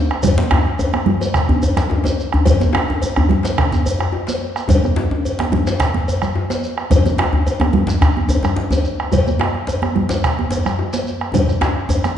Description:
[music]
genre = west african traditional, West African drum ensemble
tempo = 108 BPM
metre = 4/4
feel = straight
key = none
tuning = none
[part]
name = bombo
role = percussion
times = 0.1-12.2 s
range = none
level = -21 LUFS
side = right 2 dB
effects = none
[part]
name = djembe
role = percussion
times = 0.1-12.1 s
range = none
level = -23 LUFS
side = left 3 dB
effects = none
[part]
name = congas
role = percussion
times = 0.2-12.2 s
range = none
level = -23 LUFS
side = right 4 dB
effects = none
[part]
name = cowbell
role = percussion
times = 0.2-12.0 s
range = none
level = -25 LUFS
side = left 4 dB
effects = none
[part]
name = djembe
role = percussion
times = 0.2-12.0 s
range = none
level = -19 LUFS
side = left 1 dB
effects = none
[part]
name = shekere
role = percussion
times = 0.2-12.1 s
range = none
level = -26 LUFS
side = right 1 dB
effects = none
[sound]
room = wet recital hall reverb, RT60 1.4 s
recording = recorded in a church or concert hall, nothing above 10.8 kHz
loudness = -15 LUFS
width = side -10 dB against mid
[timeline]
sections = 0.0-12.2 A section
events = drum fill 11.3-12.2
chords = none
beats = | 0.23 0.79 1.34 1.90 | 2.46 3.01 3.57 4.12 | 4.68 5.24 5.79 6.35 | 6.91 7.46 8.02 8.57 | 9.12 9.68 10.23 10.79 | 11.34 11.90

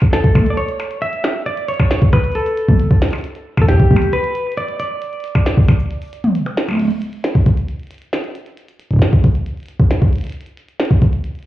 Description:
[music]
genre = IDM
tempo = 135 BPM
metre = 4/4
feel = straight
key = unclear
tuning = A4 = 441 Hz
[part]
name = electronic kick drum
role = drums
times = 0.0-11.1 s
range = none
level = -11 LUFS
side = equal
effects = overdrive, small room ambience
[part]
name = glitchy drum kit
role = drums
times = 0.0-11.5 s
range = cabasa, crash cymbal, hi-hat, percussion blips, snare drum, toms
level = -20 LUFS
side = equal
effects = overdrive, small room ambience, ping-pong delay
[part]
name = semi-hollow electric guitar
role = melody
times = 0.1-6.3 s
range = G4 to E5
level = -20 LUFS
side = equal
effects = vintage 12-bit sampler grit, ping-pong delay
[sound]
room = light reverb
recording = heard muffled through a wall, club reverb, EQ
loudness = -14 LUFS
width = side -14 dB against mid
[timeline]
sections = 0.0-6.8 A section; 6.8-11.5 B section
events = break 5.9-6.8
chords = none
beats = 0.13 0.57 1.02 | 1.46 1.91 2.35 2.80 | 3.24 3.69 4.13 4.57 | 5.02 5.46 5.91 6.35 | 6.80 7.24 7.68 8.13 | 8.57 9.02 9.46 9.91 | 10.35 10.80 11.24

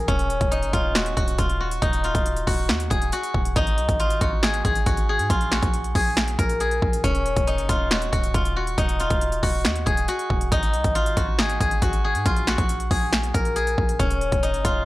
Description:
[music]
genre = hip hop, trap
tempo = 138 BPM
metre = 4/4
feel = half-time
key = Eb minor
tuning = A4 = 440 Hz
[part]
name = steel-string zither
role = melody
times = 0.0-14.8 s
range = Db4 to Bb4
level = -24 LUFS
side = left 1 dB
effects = low-pass filter
[part]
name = warm 808-style bass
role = bass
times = 0.0-14.8 s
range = Db1 to Ab2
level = -26 LUFS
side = equal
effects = none
[part]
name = big-room dance drum kit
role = drums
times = 0.1-14.7 s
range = finger snaps, hi-hat, kick drum, snare drum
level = -24 LUFS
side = equal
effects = none
[sound]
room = little or no reverb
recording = dry, gritty hardware recording, transformer saturation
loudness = -20 LUFS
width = side -17 dB against mid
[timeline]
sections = 0.0-14.8 A section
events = none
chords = 0.1 Ebm7; 3.6 Ab5; 5.3 Gbadd9/Bb; 7.0 Ebm7; 10.5 Ab5; 12.3 Gbadd9/Bb; 14.0 Ebm7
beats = | 0.08 0.52 0.95 1.39 | 1.82 2.26 2.69 3.13 | 3.56 4.00 4.43 4.87 | 5.30 5.74 6.17 6.60 | 7.04 7.47 7.91 8.34 | 8.78 9.21 9.65 10.08 | 10.52 10.95 11.39 11.82 | 12.26 12.69 13.13 13.56 | 14.00 14.43

